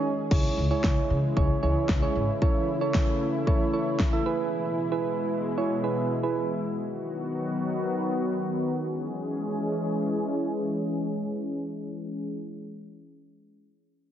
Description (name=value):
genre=synth-pop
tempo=114 BPM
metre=4/4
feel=straight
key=C# minor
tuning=A4 = 444 Hz
part: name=soft electric-piano-like synth keys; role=accompaniment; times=0.0-6.5 s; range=C#4 to E5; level=-29 LUFS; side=right 5 dB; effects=chorus, low-pass filter
part: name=lush unison pad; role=sustained chords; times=0.0-12.4 s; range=B2 to G#4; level=-29 LUFS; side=left 1 dB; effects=chorus, low-pass filter
part: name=upright bass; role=bass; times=0.3-2.3 s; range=G#1 to C#3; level=-27 LUFS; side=equal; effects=none
part: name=pop drum kit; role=drums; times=0.3-4.1 s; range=crash cymbal, kick drum, snare drum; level=-25 LUFS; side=left 1 dB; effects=none
room=moderate plate reverb, RT60 1.6 s, digital ambience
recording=heavily compressed radio sound, multiband compression, nothing above 7.5 kHz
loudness=-25 LUFS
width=side -10 dB against mid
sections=0.3-8.7 A section; 8.7-12.9 B section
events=break 0.0-0.3; filter sweep 0.3-8.7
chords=0.3 C#m; 2.4 A; 4.3 E; 6.6 B; 8.7 C#m